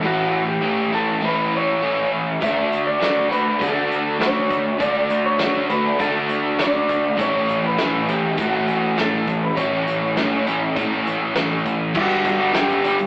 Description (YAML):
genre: rock, shoegaze and dream pop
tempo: 101 BPM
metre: 4/4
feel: straight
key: unclear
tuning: A4 = 443 Hz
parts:
  - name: electric guitar through a small old amp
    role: melody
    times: 0.0-13.1 s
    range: F#4 to E5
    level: -22 LUFS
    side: equal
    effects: none
  - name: crunchy overdriven guitar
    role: riff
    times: 0.0-13.1 s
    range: G2 to G4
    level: -20 LUFS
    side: equal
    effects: none
  - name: growling picked electric bass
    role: bass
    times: 2.4-13.1 s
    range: G1 to D3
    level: -29 LUFS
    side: equal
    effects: overdrive
  - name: loose indie drum kit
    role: drums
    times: 2.4-13.1 s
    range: crash cymbal, hi-hat, kick drum, snare drum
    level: -25 LUFS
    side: equal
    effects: none
room: wet small room reverb, RT60 0.5 s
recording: rough rehearsal-room recording, AM radio sound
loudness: -17 LUFS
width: side -24 dB against mid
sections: 0.0-12.0 A section; 12.0-13.1 B section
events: none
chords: 0.0 A; 2.4 D; 7.2 A; 12.0 Gmaj7